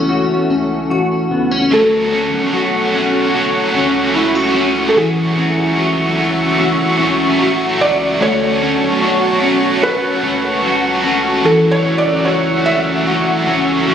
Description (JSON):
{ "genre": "dream pop", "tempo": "74 BPM", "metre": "4/4", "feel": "straight", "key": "unclear", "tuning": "A4 = 440 Hz", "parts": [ { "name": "felt-muted upright piano", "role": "melody", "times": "0.0-13.9 s", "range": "F#4 to E5", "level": "-18 LUFS", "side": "right 1 dB", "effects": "ping-pong delay" }, { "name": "phased analog pad", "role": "sustained chords", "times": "0.0-13.9 s", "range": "A3 to C#6", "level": "-21 LUFS", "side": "right 1 dB", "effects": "phaser, chorus" }, { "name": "clean electric guitar", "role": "arpeggios", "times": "0.0-13.9 s", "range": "E3 to F#4", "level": "-17 LUFS", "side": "left 2 dB", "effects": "ensemble chorus, ping-pong delay" }, { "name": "round analog bass", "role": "bass", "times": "0.0-13.9 s", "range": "A1 to D2", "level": "-27 LUFS", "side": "right 1 dB", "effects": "none" }, { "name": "cranked stack guitar", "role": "accompaniment", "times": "1.7-13.9 s", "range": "A2 to F#4", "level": "-17 LUFS", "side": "right 3 dB", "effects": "overdrive, tremolo, lush chorus" } ], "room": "moderate plate reverb, RT60 2.7 s", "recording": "recorded on a phone in the room, studio reverb, compression", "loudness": "-12 LUFS", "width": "side -8 dB against mid", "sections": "0.0-1.7 A section; 1.7-13.9 A section", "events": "none", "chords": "0.0 A6; 1.7 Dmaj7; 5.0 A6; 8.2 Dmaj7; 11.4 A6" }